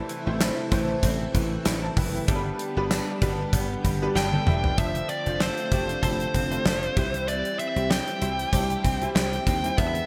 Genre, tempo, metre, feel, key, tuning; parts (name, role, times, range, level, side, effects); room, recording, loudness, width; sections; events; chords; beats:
1980s-style pop; 96 BPM; 4/4; swing 55% on 16ths; C major; A4 = 440 Hz
clear concert grand piano; accompaniment; 0.0-10.1 s; G3 to B5; -34 LUFS; equal; analog chorus
string machine, violins; sustained chords; 0.0-10.1 s; C3 to G4; -37 LUFS; equal; ensemble chorus
direct-recorded clean electric guitar; riff; 0.0-10.1 s; E3 to A4; -37 LUFS; equal; lush chorus, digital delay
gated 80s drum kit; drums; 0.1-10.1 s; hi-hat, kick drum, snare drum, tambourine, toms; -28 LUFS; equal; gated reverb
dry thumbed slap bass; bass; 0.3-10.0 s; E1 to E2; -32 LUFS; equal
cowbell; percussion; 0.4-9.9 s; -47 LUFS; equal
fuzz lead guitar; melody; 4.2-10.1 s; C5 to G5; -31 LUFS; equal; distortion
moderate plate reverb, RT60 3.0 s; bright 1980s-style digital production; -25 LUFS; mono
0.0-4.8 A section; 4.8-10.1 B section
grand piano fill 3.5-4.8; drum fill 4.2-4.8
0.0 Am; 2.3 G; 4.8 F6; 7.0 C
0.41 1.03 1.66 | 2.28 2.91 3.53 4.16 | 4.78 5.41 6.03 6.66 | 7.28 7.91 8.53 9.16 | 9.78